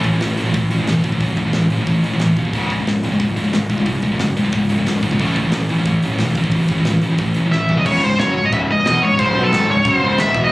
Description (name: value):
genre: heavy metal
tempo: 181 BPM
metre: 4/4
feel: straight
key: C# harmonic minor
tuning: A4 = 440 Hz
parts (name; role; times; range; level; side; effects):
- distorted electric guitar; riff; 0.0-10.5 s; C#2 to B3; -19 LUFS; left 2 dB; distortion
- scooped high-gain guitar; riff; 0.0-7.9 s; C#2 to A3; -20 LUFS; right 2 dB; distortion
- fuzz fingered electric bass; bass; 0.0-10.5 s; C#1 to D#2; -22 LUFS; equal; overdrive
- modern studio drum kit; drums; 0.0-10.4 s; china cymbal, crash cymbal, hi-hat, kick drum, snare drum, toms; -25 LUFS; equal; none
- high-gain lead guitar; melody; 7.5-10.5 s; A4 to E5; -16 LUFS; right 1 dB; distortion
room: studio reverb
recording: recorded on a phone in the room, club reverb, compression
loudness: -14 LUFS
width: side -19 dB against mid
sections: 0.0-7.9 A section; 7.9-10.5 B section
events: drum fill 7.5-7.9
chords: 0.0 A5; 2.5 C#5; 5.2 A5; 7.9 C#m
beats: 0.21 0.55 0.88 | 1.21 1.54 1.88 2.21 | 2.54 2.87 3.21 3.54 | 3.87 4.20 4.53 4.87 | 5.20 5.53 5.86 6.20 | 6.53 6.86 7.19 7.53 | 7.86 8.19 8.52 8.86 | 9.19 9.52 9.85 10.18 | 10.52